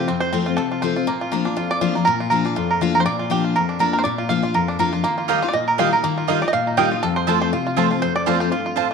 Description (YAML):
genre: bluegrass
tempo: 242 BPM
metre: 4/4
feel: swing 55% on 8ths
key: Bb major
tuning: A4 = 439 Hz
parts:
  - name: bluegrass banjo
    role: melody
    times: 0.0-8.9 s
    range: Bb3 to G5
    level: -21 LUFS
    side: right 3 dB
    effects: none
  - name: picked steel-string acoustic guitar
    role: accompaniment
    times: 0.0-8.9 s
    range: F2 to F4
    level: -21 LUFS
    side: left 6 dB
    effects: none
  - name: mandolin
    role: stabs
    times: 5.3-8.9 s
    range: Bb3 to A5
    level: -22 LUFS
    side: right 9 dB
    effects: none
room: wet echo chamber reverb, RT60 1.3 s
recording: 1960s-style stereo with parts hard left and right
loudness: -17 LUFS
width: side -5 dB against mid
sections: 0.0-8.9 A section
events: five-string banjo solo 0.0-8.9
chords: 0.0 F; 1.1 Bb; 5.0 Ebadd9; 7.0 F